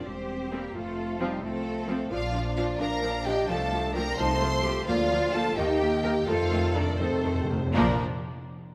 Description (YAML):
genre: classical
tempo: 87 BPM (dotted quarters)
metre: 6/8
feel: straight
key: Bb major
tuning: A4 = 440 Hz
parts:
  - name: rich symphonic violin section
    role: melody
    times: 0.0-8.0 s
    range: G4 to C6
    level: -38 LUFS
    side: equal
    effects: none
  - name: mellow concert flute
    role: second line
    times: 0.0-8.0 s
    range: Eb4 to Bb5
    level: -36 LUFS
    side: equal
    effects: none
  - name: rich studio violin section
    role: second line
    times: 0.0-8.0 s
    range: G3 to C5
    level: -40 LUFS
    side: equal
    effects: none
  - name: clear trombone section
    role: sustained chords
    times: 0.0-8.0 s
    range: Eb3 to D4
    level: -38 LUFS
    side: equal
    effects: none
  - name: mellow French horn section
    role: sustained chords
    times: 0.0-8.0 s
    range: G3 to C5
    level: -35 LUFS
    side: equal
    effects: none
  - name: rich symphonic cello section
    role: bass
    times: 0.0-8.0 s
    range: Bb2 to Bb4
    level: -36 LUFS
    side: equal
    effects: none
  - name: timpani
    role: percussion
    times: 0.0, 2.1-2.8, 6.3-8.0 s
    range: F2 to Bb2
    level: -35 LUFS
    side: equal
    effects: none
  - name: rich symphonic double bass section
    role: bass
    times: 0.1-8.0 s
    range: E1 to F2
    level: -35 LUFS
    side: equal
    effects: none
  - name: rich symphonic viola section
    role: accompaniment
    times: 0.5-8.0 s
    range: Eb3 to D4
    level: -36 LUFS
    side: equal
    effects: none
room: moderate scoring stage reverb, RT60 2.0 s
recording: none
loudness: -27 LUFS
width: mono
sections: 0.0-7.7 A section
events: timpani fill 6.3-7.7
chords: 0.1 C/E; 0.8 F; 2.1 Bb; 3.5 F7/C; 4.9 Bb/D; 5.6 Eb; 6.3 F7; 7.7 Bb